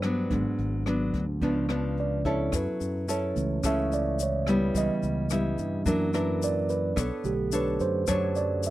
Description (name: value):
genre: bossa nova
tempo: 108 BPM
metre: 4/4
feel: straight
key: unclear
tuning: A4 = 439 Hz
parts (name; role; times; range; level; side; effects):
- mellow tine electric piano; accompaniment; 0.0-8.7 s; D3 to G5; -29 LUFS; right 4 dB; none
- nylon-string guitar; accompaniment; 0.0-8.7 s; G2 to C#5; -30 LUFS; left 2 dB; none
- fingered electric bass; bass; 0.0-8.7 s; G#1 to G2; -31 LUFS; left 1 dB; none
- jazz brush drum kit; drums; 0.0-8.7 s; hi-hat, kick drum, rim click; -34 LUFS; left 1 dB; none
- tube shaker; percussion; 2.5-8.7 s; none; -39 LUFS; left 14 dB; none
room: little or no reverb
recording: dry, close 1970s-style studio recording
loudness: -25 LUFS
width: side -15 dB against mid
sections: 0.0-8.7 A section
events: tine electric piano solo 0.0-8.7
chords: 0.3 G#m7b5; 1.4 C#7b9; 2.5 F#m7; 4.7 C#m7b5; 5.9 F#7b13; 7.0 Bm9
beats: | 0.31 0.86 1.42 1.97 | 2.53 3.08 3.64 4.19 | 4.75 5.30 5.86 6.41 | 6.97 7.53 8.08 8.63